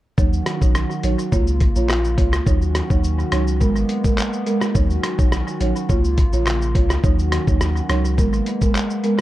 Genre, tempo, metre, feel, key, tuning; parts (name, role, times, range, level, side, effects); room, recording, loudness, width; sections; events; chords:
dancehall; 105 BPM; 4/4; straight; Eb minor; A4 = 437 Hz
buzzing marimba with medium mallets; accompaniment; 0.2-9.2 s; Gb3 to Db5; -23 LUFS; right 3 dB; sidechain pumping
hollow soft pad; sustained chords; 0.2-9.2 s; Db3 to Gb4; -29 LUFS; left 2 dB; chorus, sidechain pumping
punchy sub bass; bass; 0.2-8.4 s; Ab1 to Eb2; -21 LUFS; equal
lo-fi sampler-style drum kit; drums; 0.2-9.2 s; handclaps, hi-hat, kick drum, rim click, shaker; -20 LUFS; equal
light reverb; echo-heavy mix; -16 LUFS; side -15 dB against mid
0.2-9.2 A section
0.2 Ebm7; 1.3 Db6; 2.5 Ebm7; 3.6 Abmadd9; 4.8 Ebm7; 5.9 Db6; 7.0 Ebm7; 8.2 Abmadd9